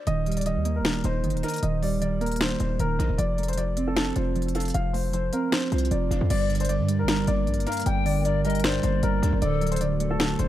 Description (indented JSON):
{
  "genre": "hip hop, trap",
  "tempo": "154 BPM",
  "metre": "4/4",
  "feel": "half-time",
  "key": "G minor",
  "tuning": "A4 = 440 Hz",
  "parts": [
    { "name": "dark baby grand piano", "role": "melody", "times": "0.0-10.5 s", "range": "A4 to G5", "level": "-30 LUFS", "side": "left 2 dB", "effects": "low-pass filter, analog delay" },
    { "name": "mellow electric guitar", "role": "accompaniment", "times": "0.1-10.5 s", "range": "G2 to F5", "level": "-28 LUFS", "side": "right 5 dB", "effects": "low-pass filter" },
    { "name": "hard-hitting 808-style bass", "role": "bass", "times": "0.1-10.5 s", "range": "D1 to G2", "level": "-26 LUFS", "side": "left 1 dB", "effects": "none" },
    { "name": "trap drum kit", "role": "drums", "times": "0.1-10.5 s", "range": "crash cymbal, hi-hat, snare drum", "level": "-30 LUFS", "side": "left 1 dB", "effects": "analog delay" },
    { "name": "bright polished pan flute", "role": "second line", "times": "6.3-9.8 s", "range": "A4 to G5", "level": "-34 LUFS", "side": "left 10 dB", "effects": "analog delay" },
    { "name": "dark analog pad", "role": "sustained chords", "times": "6.3-10.5 s", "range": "D3 to Bb4", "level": "-36 LUFS", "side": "left 2 dB", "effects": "chorus" }
  ],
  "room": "digital ambience",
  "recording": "echo-heavy mix",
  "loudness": "-22 LUFS",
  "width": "side -13 dB against mid",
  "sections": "0.0-6.3 A section; 6.3-10.5 B section",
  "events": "none",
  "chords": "0.1 Eb; 3.2 F; 6.3 Gm; 9.4 D"
}